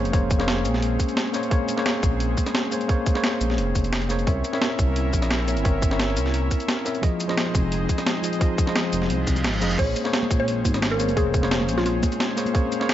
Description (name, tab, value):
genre	liquid drum and bass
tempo	174 BPM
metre	4/4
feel	straight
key	Bb minor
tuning	A4 = 440 Hz
part	mellow tine electric piano	accompaniment	0.0-12.9 s	F3 to E5	-26 LUFS	equal	medium stereo tremolo, digital delay
part	airy breathy pad	sustained chords	0.0-12.9 s	Ab3 to E4	-30 LUFS	left 2 dB	chorus, vintage 12-bit sampler grit
part	smooth synth bass	bass	0.0-12.0 s	F1 to C2	-25 LUFS	equal	none
part	breakbeat sampler-style drum kit	drums	0.1-12.9 s	crash cymbal, hi-hat, shaker, snare drum	-27 LUFS	equal	none
part	electronic kick drum	drums	0.1-12.6 s	none	-22 LUFS	equal	none
part	reverse cymbal	sound effects	9.2-9.8 s	none	-32 LUFS	right 2 dB	none
part	mallet-like synth pluck	melody	9.8-11.9 s	F4 to Db5	-28 LUFS	equal	chorus, digital delay
part	congas	percussion	10.2-12.5 s	none	-31 LUFS	right 2 dB	none
room	light reverb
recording	nothing above 7.7 kHz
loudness	-20 LUFS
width	side -12 dB against mid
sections	0.0-12.9 A section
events	reverse cymbal 9.2-9.8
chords	0.0 Bbm9; 4.3 C7b9; 7.0 Fm7; 9.8 Bbm9